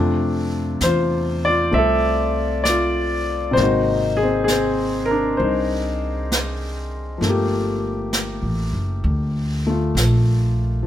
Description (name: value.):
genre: jazz ballad.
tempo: 66 BPM.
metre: 4/4.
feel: swing 68% on 8ths.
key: unclear.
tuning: A4 = 439 Hz.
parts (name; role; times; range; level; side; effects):
warm concert grand piano; accompaniment; 0.0-10.9 s; C3 to E5; -20 LUFS; left 2 dB; none.
upright bass; bass; 0.0-10.8 s; Gb1 to F2; -22 LUFS; equal; none.
jazz brush drum kit; drums; 0.8-10.9 s; brushed snare drum, hi-hat, snare drum; -27 LUFS; right 1 dB; none.
room: light reverb.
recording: close, detailed microphones.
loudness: -18 LUFS.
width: side -11 dB against mid.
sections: 0.0-10.9 A section.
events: none.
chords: 0.0 F6; 3.6 Ab9; 7.2 Gm9.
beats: 0.81 1.73 2.65 | 3.56 4.48 5.39 6.31 | 7.22 8.13 9.04 9.95 | 10.87.